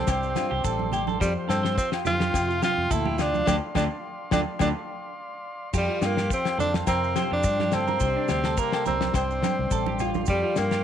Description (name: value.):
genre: highlife guitar band.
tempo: 106 BPM.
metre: 4/4.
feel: swing 54% on 16ths.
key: F major.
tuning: A4 = 443 Hz.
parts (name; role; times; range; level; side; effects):
bright tenor saxophone; melody; 0.0-10.8 s; G3 to F4; -27 LUFS; equal; none.
nylon-string guitar; accompaniment; 0.0-10.8 s; F2 to G4; -34 LUFS; left 10 dB; none.
combo organ; sustained chords; 0.0-10.8 s; D5 to C6; -38 LUFS; left 1 dB; none.
electric guitar through a small old amp; arpeggios; 0.0-10.8 s; D4 to C5; -31 LUFS; right 10 dB; slapback echo.
fingered electric bass; bass; 0.0-10.8 s; A1 to G2; -29 LUFS; equal; none.
damped 70s drum kit; drums; 0.1-10.8 s; crash cymbal, kick drum, snare drum; -29 LUFS; left 3 dB; none.
agogo bells; percussion; 0.1-10.7 s; none; -34 LUFS; left 10 dB; none.
maracas; percussion; 0.1-10.8 s; none; -42 LUFS; right 16 dB; none.
congas; percussion; 0.4-10.3 s; none; -32 LUFS; right 11 dB; none.
room: light reverb, small room reverb.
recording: 1960s-style stereo with parts hard left and right.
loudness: -22 LUFS.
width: side -9 dB against mid.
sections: 0.0-5.7 A section; 5.7-10.8 A section.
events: band accent 3.5-5.7.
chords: 0.0 Csus2; 1.2 Fsus2; 3.5 Dm7; 5.7 Fsus2; 8.0 Csus2; 10.3 Fsus2.